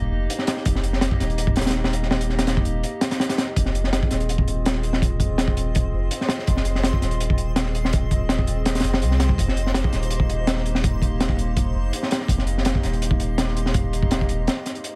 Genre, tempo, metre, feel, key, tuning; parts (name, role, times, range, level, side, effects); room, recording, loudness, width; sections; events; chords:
drum and bass, jungle; 165 BPM; 4/4; straight; A4 = 442 Hz
warbly tape-like pad; sustained chords; 0.0-15.0 s; Bb3 to Eb5; -33 LUFS; equal; chorus, built-in reverb
soft dub sub bass; bass; 0.0-14.5 s; Eb1 to C2; -26 LUFS; equal
crunchy breakbeat drum kit; drums; 0.3-14.9 s; hi-hat, kick drum, snare drum; -24 LUFS; equal
backwards swelling texture; texture; 4.4-15.0 s; C5 to C6; -41 LUFS; equal; built-in reverb
small room ambience; vinyl crackle; -22 LUFS; mono
0.0-15.0 A section
break 2.8-3.6, 14.5-15.0
0.0 Eb; 3.6 Fm7; 9.4 Eb